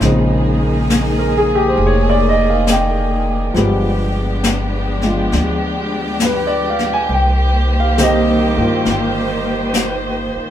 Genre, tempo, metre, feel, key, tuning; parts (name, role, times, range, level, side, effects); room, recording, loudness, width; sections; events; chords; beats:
jazz ballad; 68 BPM; 4/4; swing 69% on 8ths; A4 = 439 Hz
warm grand piano; accompaniment; 0.0-10.5 s; Db3 to Ab5; -18 LUFS; equal
dark chamber string section; sustained chords; 0.0-10.5 s; Eb3 to C5; -20 LUFS; left 1 dB
upright bass; bass; 0.0-10.4 s; F1 to G2; -19 LUFS; equal
jazz brush drum kit; drums; 0.0-10.5 s; brushed snare drum, hi-hat, snare drum; -21 LUFS; left 2 dB
moderate small room reverb, RT60 0.5 s; band playing live in one room; -13 LUFS; side -10 dB against mid
0.0-10.5 A section
0.0 Bbm11; 3.6 G7b9; 7.1 Cm7
| 0.02 0.91 1.79 2.67 | 3.56 4.44 5.32 6.21 | 7.09 7.97 8.86 9.74